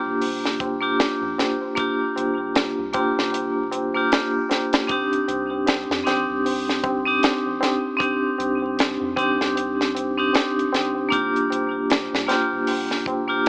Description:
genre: trip hop.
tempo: 77 BPM.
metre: 4/4.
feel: swing 59% on 16ths.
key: G minor.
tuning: A4 = 439 Hz.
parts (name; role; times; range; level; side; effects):
vibraphone with hard mallets; accompaniment; 0.0-13.5 s; Bb3 to G4; -24 LUFS; equal; tremolo, tape echo.
soft dub sub bass; bass; 0.0-13.4 s; F1 to F2; -46 LUFS; equal; none.
tabla; percussion; 0.1-13.5 s; none; -33 LUFS; equal; none.
tight funk drum kit; drums; 0.2-13.5 s; hi-hat, kick drum, snare drum; -25 LUFS; equal; none.
room: light reverb, studio ambience.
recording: vinyl crackle, AM radio sound.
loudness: -22 LUFS.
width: mono.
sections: 0.0-13.5 A section.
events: none.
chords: 0.0 Gm7; 4.9 Cmadd9; 11.1 Gm7.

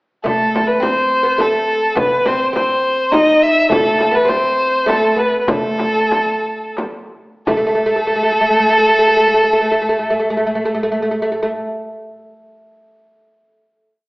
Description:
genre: Arabic maqam ensemble.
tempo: 83-104 BPM.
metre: 3/4.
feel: straight.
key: A minor.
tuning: A4 = 438 Hz.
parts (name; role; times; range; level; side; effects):
rich violin; melody; 0.2-10.8 s; A4 to E5; -14 LUFS; equal; none.
oud; second line; 0.2-11.5 s; A3 to D#4; -19 LUFS; equal; none.
darbuka; percussion; 0.2-7.8 s; none; -36 LUFS; equal; none.
frame drum; percussion; 0.3-7.8 s; none; -23 LUFS; equal; none.
room: wet large studio reverb, RT60 1.4 s.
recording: band playing live in one room, AM radio sound.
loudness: -13 LUFS.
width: side -24 dB against mid.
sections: 0.3-7.5 A section; 7.5-11.8 final note.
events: slowing down 3.7-7.5.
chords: none.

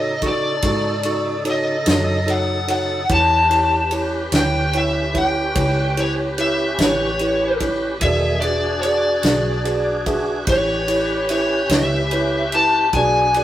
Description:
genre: slow blues.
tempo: 49 BPM (dotted quarters).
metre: 12/8.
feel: straight.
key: unclear.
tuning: A4 = 441 Hz.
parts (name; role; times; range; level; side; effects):
lead guitar through a small cranked amp; melody; 0.0-13.4 s; C#5 to A5; -20 LUFS; left 1 dB; overdrive.
bright tine electric piano; accompaniment; 0.0-13.4 s; D#4 to C#6; -22 LUFS; right 2 dB; none.
tonewheel organ; sustained chords; 0.0-13.4 s; C#3 to B4; -26 LUFS; equal; slow rotary speaker, overdrive, chorus vibrato.
vintage muted fingered electric bass; bass; 0.0-13.4 s; E1 to A2; -25 LUFS; equal; none.
natural country drum kit; drums; 0.2-13.4 s; kick drum, ride cymbal, snare drum; -25 LUFS; equal; none.
room: wet studio reverb, RT60 0.6 s.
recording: rough rehearsal-room recording.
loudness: -16 LUFS.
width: side -12 dB against mid.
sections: 0.0-13.4 A section.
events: none.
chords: 0.0 B7 (rootless); 3.1 A7; 8.0 E7; 10.5 A7; 12.9 Bm6.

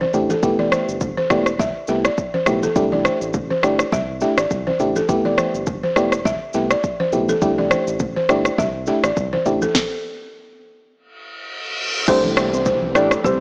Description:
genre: afrobeats.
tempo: 103 BPM.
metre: 4/4.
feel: swing 55% on 16ths.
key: C major.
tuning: A4 = 437 Hz.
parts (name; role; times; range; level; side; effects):
balafon; riff; 0.0-13.4 s; G4 to E5; -25 LUFS; equal; analog delay.
round analog bass; bass; 0.0-13.4 s; E1 to C2; -31 LUFS; equal; none.
congas; percussion; 0.0-13.4 s; none; -32 LUFS; equal; none.
FM electric piano; accompaniment; 0.1-13.1 s; A3 to G4; -24 LUFS; equal; none.
afro-pop drum kit; drums; 0.1-13.4 s; crash cymbal, kick drum, rim click, shaker, snare drum; -24 LUFS; equal; vintage 12-bit sampler grit.
reverse cymbal and downlifter; sound effects; 11.2-13.4 s; none; -28 LUFS; equal; none.
soft octave-layered synth lead; melody; 12.1-13.4 s; C5 to D5; -22 LUFS; equal; chorus, phaser.
hollow soft pad; sustained chords; 12.1-13.4 s; E3 to G4; -32 LUFS; equal; none.
room: light reverb, digital ambience.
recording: dry, gritty hardware recording, small speaker sound.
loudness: -19 LUFS.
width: mono.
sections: 0.0-12.1 A section; 12.1-13.4 B section.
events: stop 9.7-12.1; reverse cymbal 11.2-12.1.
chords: 0.4 Fmaj9#11; 2.8 C6; 5.1 Fmaj9#11; 7.4 C6; 9.7 N.C.; 12.1 C6.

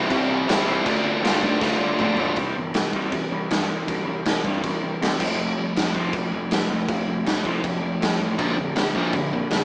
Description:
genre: punk rock.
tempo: 160 BPM.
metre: 4/4.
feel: straight.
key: C major.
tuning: A4 = 440 Hz.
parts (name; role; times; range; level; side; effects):
biting overdriven guitar; riff; 0.0-2.4, 8.4-9.6 s; Bb2 to F4; -27 LUFS; equal; none.
crunchy overdriven guitar; riff; 0.0-9.6 s; Bb2 to F4; -29 LUFS; equal; none.
fuzz picked electric bass; bass; 0.0-9.6 s; F1 to D3; -31 LUFS; equal; overdrive.
raw garage drum kit; drums; 0.1-9.6 s; crash cymbal, kick drum, snare drum, toms; -27 LUFS; equal; none.
room: light reverb.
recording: band playing live in one room, small speaker sound.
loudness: -23 LUFS.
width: mono.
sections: 0.0-2.4 A section; 2.4-9.6 B section.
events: drum fill 1.6-2.4.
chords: 0.0 C; 0.9 Dm; 2.4 C; 5.2 F; 8.4 Bb.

